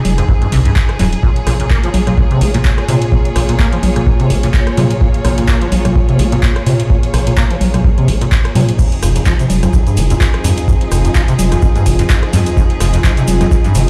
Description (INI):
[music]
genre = acid house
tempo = 127 BPM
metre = 4/4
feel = swing 56% on 16ths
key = unclear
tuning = A4 = 440 Hz
[part]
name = rich chamber string section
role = sustained chords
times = 0.0-13.9 s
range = F3 to Db5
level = -24 LUFS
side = equal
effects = sidechain pumping
[part]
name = booming analog drum machine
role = drums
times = 0.0-13.9 s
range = congas, crash cymbal, handclaps, hi-hat, rim click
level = -22 LUFS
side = equal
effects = none
[part]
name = ethereal airy pad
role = texture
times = 0.1-13.9 s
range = F4 to Bb5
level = -29 LUFS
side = equal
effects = none
[part]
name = round analog bass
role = bass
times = 0.1-13.9 s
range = Eb1 to Bb2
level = -17 LUFS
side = equal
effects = sidechain pumping
[part]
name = acid bass, saw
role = riff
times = 0.2-13.8 s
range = F2 to Bb3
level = -19 LUFS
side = equal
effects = tube saturation, ensemble chorus, digital delay
[part]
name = electronic kick drum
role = drums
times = 0.3-13.6 s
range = none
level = -16 LUFS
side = equal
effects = overdrive
[part]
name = egg shaker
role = percussion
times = 8.8-13.9 s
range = none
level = -32 LUFS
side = equal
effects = none
[sound]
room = little or no reverb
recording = played on a big sound system in a bare room, stone room reverb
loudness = -13 LUFS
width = mono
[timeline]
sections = 0.0-13.9 A section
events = none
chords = 0.0 Fm7; 1.2 Bbm7; 8.8 Fm7